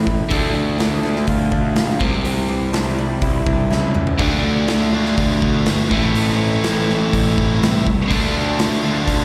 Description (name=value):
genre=quiet-loud alternative rock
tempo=123 BPM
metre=4/4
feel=straight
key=D minor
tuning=A4 = 440 Hz
part: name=picked swing-style acoustic guitar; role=arpeggios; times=0.0-4.2 s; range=C3 to F4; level=-29 LUFS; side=equal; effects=none
part: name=crunchy overdriven guitar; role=riff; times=0.0-9.2 s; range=A2 to D4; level=-22 LUFS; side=equal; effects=slapback echo
part: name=fuzz picked electric bass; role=bass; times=0.0-9.2 s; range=G1 to D2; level=-25 LUFS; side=equal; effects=overdrive
part: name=big rock drum kit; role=drums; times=0.1-9.2 s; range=hi-hat, kick drum, snare drum, toms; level=-24 LUFS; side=equal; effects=none
part: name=high-gain distorted guitar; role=riff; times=4.2-9.2 s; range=A2 to F4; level=-25 LUFS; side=equal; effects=distortion, slapback echo
room=small room ambience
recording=live gig heard through the venue's PA, recital hall reverb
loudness=-18 LUFS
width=mono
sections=0.0-9.2 A section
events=drum fill 3.7-4.2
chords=0.3 Dm; 2.0 Cadd9; 4.2 Dm; 5.9 Am; 8.1 Dm